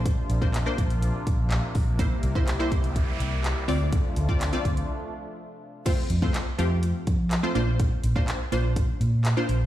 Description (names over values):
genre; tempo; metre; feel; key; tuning
dance-pop; 124 BPM; 4/4; straight; F major; A4 = 437 Hz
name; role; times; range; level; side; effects
punchy chord stab; accompaniment; 0.0-9.6 s; A3 to D5; -30 LUFS; equal; chorus, sidechain pumping
sweeping resonant pad; sustained chords; 0.0-5.8 s; C3 to G4; -35 LUFS; left 1 dB; wide subtle chorus, sidechain pumping
vintage muted fingered electric bass; bass; 0.0-9.7 s; Bb1 to F3; -25 LUFS; equal; sidechain pumping
pop drum kit; drums; 0.1-9.6 s; crash cymbal, handclaps, hi-hat, kick drum; -26 LUFS; equal; none
noise sweep; sound effects; 2.6-4.9 s; none; -39 LUFS; right 3 dB; none
room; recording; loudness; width
digital ambience; played on a big sound system in a bare room, large studio reverb; -23 LUFS; side -13 dB against mid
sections
0.0-5.9 A section; 5.9-9.7 B section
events
noise sweep 2.6-5.9; break 4.9-5.9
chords
0.0 Bbadd9; 2.0 C7; 3.7 Dm7; 5.9 F; 7.6 Bbadd9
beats
| 0.06 0.54 1.02 1.51 | 1.99 2.48 2.96 3.44 | 3.93 4.41 4.89 5.38 | 5.86 6.35 6.83 7.31 | 7.80 8.28 8.77 9.25